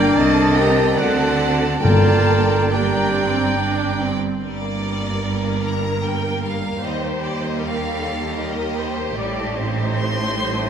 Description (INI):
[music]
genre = classical, slow romantic movement for symphony orchestra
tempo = 68-79 BPM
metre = 3/4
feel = rubato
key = G minor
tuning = A4 = 440 Hz
[part]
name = clear chamber violin section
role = melody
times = 0.0-10.7 s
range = C5 to C6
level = -29 LUFS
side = left 3 dB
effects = none
[part]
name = bright clarinet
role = second line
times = 0.0-4.0 s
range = D5 to Eb5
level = -29 LUFS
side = equal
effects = none
[part]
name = bright large flute ensemble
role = second line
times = 0.0-4.0 s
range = A5 to Bb5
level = -28 LUFS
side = equal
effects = none
[part]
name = clear chamber violin section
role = second line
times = 0.0-10.7 s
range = G3 to A5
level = -27 LUFS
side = left 2 dB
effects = none
[part]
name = warm oboe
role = second line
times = 0.0-4.1 s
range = F#5 to A5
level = -28 LUFS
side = right 1 dB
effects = none
[part]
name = rich studio viola section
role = accompaniment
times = 0.0-10.7 s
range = Bb3 to D5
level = -26 LUFS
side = right 2 dB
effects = none
[part]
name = mellow French horn section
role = sustained chords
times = 0.0-10.7 s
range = G3 to Bb4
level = -24 LUFS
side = left 2 dB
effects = none
[part]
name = clear trumpet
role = stabs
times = 0.0-3.6 s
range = Bb3 to G4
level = -26 LUFS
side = right 1 dB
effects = none
[part]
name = clear chamber double bass section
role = bass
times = 0.0-10.7 s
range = G1 to Eb2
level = -26 LUFS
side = right 5 dB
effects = none
[part]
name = clear studio cello section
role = bass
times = 0.0-10.7 s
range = Eb2 to D3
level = -25 LUFS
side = right 3 dB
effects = none
[part]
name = timpani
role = percussion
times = 0.0-3.1 s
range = G2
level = -21 LUFS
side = left 1 dB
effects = none
[sound]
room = wet concert hall reverb, RT60 1.8 s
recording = none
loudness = -17 LUFS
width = side -8 dB against mid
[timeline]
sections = 0.0-4.4 A section; 4.4-10.7 B section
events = none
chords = 0.2 Adim/C; 1.0 D7; 1.8 Gm; 6.8 Eb; 9.2 Am7b5